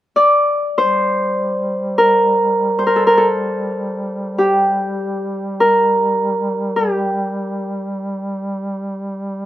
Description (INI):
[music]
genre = caucasian folk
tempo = 49-53 BPM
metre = 4/4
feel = rubato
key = G minor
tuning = A4 = 440 Hz
[part]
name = Celtic harp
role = melody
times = 0.2-9.1 s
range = G4 to D5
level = -15 LUFS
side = equal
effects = none
[part]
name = mellow duduk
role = drone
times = 0.8-9.5 s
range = G3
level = -24 LUFS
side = right 1 dB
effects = none
[sound]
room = small room ambience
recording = rough home demo mix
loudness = -15 LUFS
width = side -13 dB against mid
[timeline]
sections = 0.8-9.5 A section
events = none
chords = none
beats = | 0.77 1.97 3.16 4.37 | 5.57 6.74 7.88 9.02